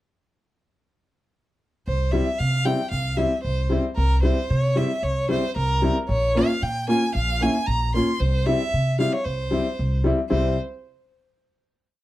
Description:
klezmer; 114 BPM; 4/4; straight; C phrygian dominant; A4 = 440 Hz
clear violin; melody; 1.9-10.5 s; Bb4 to C6; -26 LUFS; right 1 dB; plate reverb
upright bass; bass; 1.9-10.6 s; Bb1 to C3; -23 LUFS; equal
clear upright piano; accompaniment; 2.1-10.5 s; G3 to F4; -23 LUFS; left 2 dB
moderate small room reverb, RT60 0.6 s; dark, warm production; -20 LUFS; side -15 dB against mid
1.9-10.3 A section; 10.3-12.0 final chord
1.9 C; 6.1 Bbm; 8.2 C

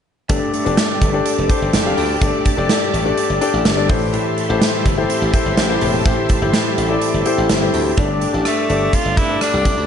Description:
1980s-style pop; 125 BPM; 4/4; straight; A4 = 439 Hz
warm baby grand piano; accompaniment; 0.3-9.9 s; G2 to F5; -19 LUFS; left 4 dB
string machine, violas; sustained chords; 0.3-9.9 s; G4 to D6; -26 LUFS; equal; ensemble chorus
direct-recorded clean electric guitar; riff; 0.3-9.9 s; E3 to G4; -25 LUFS; right 4 dB; analog chorus, digital delay
glassy slap bass; bass; 0.3-9.9 s; E1 to G2; -22 LUFS; equal
big rock drum kit; drums; 0.3-9.8 s; hi-hat, kick drum, rim click, snare drum; -19 LUFS; right 1 dB; gated reverb
edgy tenor saxophone; melody; 8.5-9.9 s; A3 to F4; -20 LUFS; right 1 dB
light reverb, studio reverb; nothing above 10.9 kHz; -14 LUFS; side -8 dB against mid
0.3-8.0 A section; 8.0-9.9 B section
0.3 Gsus2; 3.9 Am7; 8.0 Gsus2

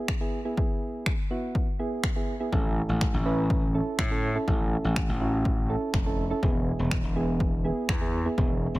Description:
dance-pop; 123 BPM; 4/4; straight; A major; A4 = 438 Hz
soft electric-piano-like synth keys; accompaniment; 0.0-8.8 s; B3 to B4; -31 LUFS; right 2 dB; chorus, sidechain pumping
deep house drum kit; drums; 0.1-8.5 s; finger snaps, kick drum; -28 LUFS; equal; overdrive
gritty slap bass; bass; 2.5-8.8 s; E1 to A2; -27 LUFS; equal; overdrive, sidechain pumping
little or no reverb; -24 LUFS; side -18 dB against mid
0.0-8.8 A section
0.0 E; 2.5 A; 6.4 E

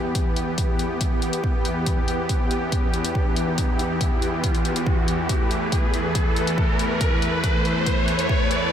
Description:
heavy wobble dubstep; 140 BPM; 4/4; half-time; E minor; A4 = 440 Hz
supersaw pad; sustained chords; 0.0-8.7 s; E2 to B4; -24 LUFS; equal; sidechain pumping
riser; sound effects; 0.7-8.7 s; -28 LUFS; equal
electronic hi-hat; drums; 0.1-8.6 s; -33 LUFS; left 4 dB
electronic kick drum; drums; 0.2-8.4 s; -23 LUFS; equal
moderate huge ambient reverb, RT60 7.5 s; dreamy mix soaked in reverb; -20 LUFS; side -9 dB against mid
0.0-8.7 A section
build-up 0.0-8.7; riser 0.7-8.7; drum fill 5.3-8.7
0.0 Em

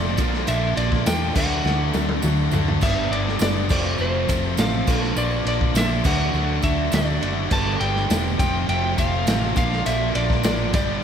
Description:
classic rock; 102 BPM; 4/4; straight; A4 = 444 Hz
electric slide guitar; melody; 0.0-11.0 s; C5 to A5; -27 LUFS; equal
biting overdriven guitar; riff; 0.0-11.0 s; F2 to D4; -31 LUFS; left 1 dB
crunchy overdriven guitar; riff; 0.0-11.0 s; F2 to D4; -27 LUFS; right 9 dB; slapback echo
overdriven electric guitar; riff; 0.0-11.0 s; F2 to G4; -28 LUFS; left 11 dB; slapback echo
hollow-body short-scale fingered electric bass; bass; 0.0-11.0 s; E1 to E2; -25 LUFS; equal
vintage drum kit; drums; 0.2-10.9 s; crash cymbal, kick drum, ride cymbal, snare drum, splash cymbal, toms; -24 LUFS; equal
tambourine; percussion; 0.2-10.9 s; -39 LUFS; right 9 dB
moderate lush hall reverb, RT60 1.6 s, studio reverb; big arena sound; -19 LUFS; side -8 dB against mid
0.0-11.0 A section
drum fill 1.6-2.8
0.2 Bb; 1.4 D; 2.8 G; 3.7 F; 4.9 Bb; 6.0 D; 7.5 G; 8.4 F; 9.6 Bb

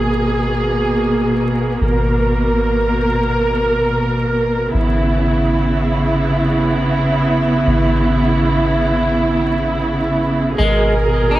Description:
trip hop; free time; G# minor; A4 = 442 Hz
dark studio string section; sustained chords; 0.0-11.4 s; B2 to A#4; -15 LUFS; right 1 dB; vintage 12-bit sampler grit
soft 808-style bass; bass; 0.0-11.4 s; G#1; -21 LUFS; equal
electric guitar at the edge of break-up; arpeggios; 10.6-11.4 s; G#3 to D#4; -18 LUFS; left 1 dB; digital delay
light reverb, digital ambience; vinyl crackle; -14 LUFS; side -15 dB against mid
0.0-11.4 A section
0.0 G#madd9; 4.7 C#m7/G#; 10.6 G#madd9

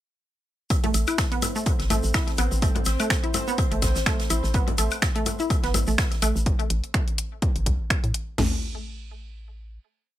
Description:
minimal techno; 125 BPM; 4/4; swing 56% on 16ths; A minor; A4 = 440 Hz
big rock drum kit; drums; 0.7-6.5 s; hi-hat, snare drum; -37 LUFS; right 3 dB; sidechain pumping on hats, high-pass filter on hats, small room ambience, high-pass filter on snare, high-pass filter on room
garage drum kit; drums; 0.7-8.2 s; finger snaps, hi-hat; -27 LUFS; equal; small room ambience
house drum kit; drums; 0.7-8.5 s; crash cymbal, kick drum, snare drum, toms; -25 LUFS; equal; overdrive, small room ambience
tube shaker; percussion; 0.7-6.4 s; -33 LUFS; left 2 dB
woodblock and congas; percussion; 0.7-6.3 s; -32 LUFS; left 5 dB; small room ambience, ping-pong delay
pulsing gated texture; texture; 1.0-6.5 s; C4 to C5; -36 LUFS; equal; chorus, built-in reverb, sidechain pumping
resonant blip pluck; riff; 0.8-8.6 s; A3 to E4; -29 LUFS; right 1 dB; chorus, cassette tape, sidechain pumping, ping-pong delay
hollow knocking FM bass; bass; 0.9-9.8 s; G1 to A2; -26 LUFS; equal; sidechain pumping
little or no reverb; -21 LUFS; side -13 dB against mid
0.7-8.4 drop; 8.4-10.2 final note
drop 0.7-8.4
0.7 Am; 8.4 N.C.

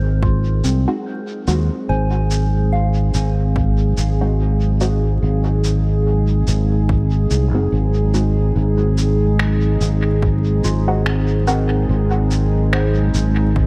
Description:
ambient dub; 72 BPM; 4/4; swing 57% on 16ths; Ab mixolydian; A4 = 441 Hz
warbly tape-like pad; sustained chords; 0.0-13.7 s; Gb3 to Ab4; -25 LUFS; equal; chorus, built-in reverb
soft synth bell; arpeggios; 0.0-13.7 s; C4 to Ab5; -31 LUFS; equal; chorus, phaser, dub echo
fingered electric bass; bass; 0.0-13.7 s; Gb1 to Eb2; -19 LUFS; equal
electronic kick drum; drums; 0.2-13.7 s; -24 LUFS; equal; overdrive
electronic shaker and finger snaps; drums; 0.6-13.3 s; -30 LUFS; equal; dub echo
filtered dub chord stab; stabs; 0.9-11.7 s; Ab3 to Gb4; -29 LUFS; equal; phaser, analog chorus, dub echo
digital ambience; vinyl crackle; -17 LUFS; mono
0.0-13.7 A section
0.0 Ab7

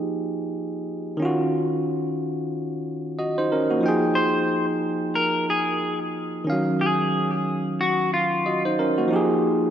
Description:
hip hop; 91 BPM; 4/4; swing 58% on 16ths; F phrygian; A4 = 440 Hz
barky tine electric piano; accompaniment; 0.0-9.7 s; Eb3 to G5; -22 LUFS; equal; high-pass filter, low-pass filter
clean electric guitar; melody; 4.2-8.6 s; F4 to C5; -24 LUFS; left 1 dB; lush chorus, high-pass filter, low-pass filter, analog delay
wet lush hall reverb, RT60 2.4 s; dreamy mix soaked in reverb; -21 LUFS; side -9 dB against mid
0.0-3.8 A section; 3.8-9.7 A section
0.0 Fm9; 1.2 Ebm9; 3.8 Fm9; 6.5 Ebm9; 9.1 Fm9

